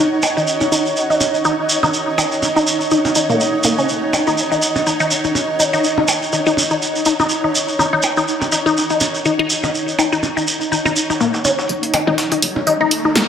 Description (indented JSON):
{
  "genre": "minimal techno",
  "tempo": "123 BPM",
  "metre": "4/4",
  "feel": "swing 56% on 16ths",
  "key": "Eb minor",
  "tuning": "A4 = 444 Hz",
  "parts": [
    { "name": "resonant blip pluck", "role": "riff", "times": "0.0-13.1 s", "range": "Bb3 to Eb4", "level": "-18 LUFS", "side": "left 2 dB", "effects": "phaser, cassette tape, analog delay" },
    { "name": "bubbling stepped-filter texture", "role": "texture", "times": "0.0-11.7 s", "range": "Eb5", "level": "-26 LUFS", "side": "right 4 dB", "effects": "chorus, built-in reverb" },
    { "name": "granular cloud pad", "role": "texture", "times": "0.0-13.3 s", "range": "Eb4 to Gb5", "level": "-22 LUFS", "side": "equal", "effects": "built-in reverb, wide subtle chorus" },
    { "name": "breakbeat sampler-style drum kit", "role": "drums", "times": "0.1-13.3 s", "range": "hi-hat, snare drum, tambourine", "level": "-25 LUFS", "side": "equal", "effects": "high-pass filter on perc, low-pass filter on perc, high-pass filter on hats, low-pass filter on hats, high-pass filter on snare, low-pass filter on snare" },
    { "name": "percussion blips", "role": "percussion", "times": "0.2-13.3 s", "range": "none", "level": "-24 LUFS", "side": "right 3 dB", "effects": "diffuse ambient delay" },
    { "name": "shekere", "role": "percussion", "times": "0.2-11.7 s", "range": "none", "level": "-21 LUFS", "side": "right 2 dB", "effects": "none" },
    { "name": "woody FM bass", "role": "bass", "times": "11.7-13.3 s", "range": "Eb1 to Bb1", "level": "-28 LUFS", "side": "equal", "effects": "high-pass filter" },
    { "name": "riser", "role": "sound effects", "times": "12.2-13.3 s", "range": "none", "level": "-29 LUFS", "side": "right 2 dB", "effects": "none" },
    { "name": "punchy analog drum machine", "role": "drums", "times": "11.9-13.3 s", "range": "hi-hat, snare drum", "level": "-17 LUFS", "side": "equal", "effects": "low-pass filter on hats, low-pass filter on snare" }
  ],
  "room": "wet lush hall reverb, RT60 1.5 s, digital ambience",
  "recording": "dreamy mix soaked in reverb",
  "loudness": "-14 LUFS",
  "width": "side -8 dB against mid",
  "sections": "0.0-11.7 A section; 11.7-13.3 B section",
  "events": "build-up 11.7-13.3; filter sweep on synth arpeggio sound 11.7-13.3; riser 12.2-13.3",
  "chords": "0.0 Ebm7",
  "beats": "0.47 0.96 1.45 | 1.94 2.43 2.91 3.40 | 3.89 4.38 4.87 5.35 | 5.84 6.33 6.82 7.30 | 7.79 8.28 8.77 9.26 | 9.74 10.23 10.72 11.21 | 11.69 12.18 12.67 13.16"
}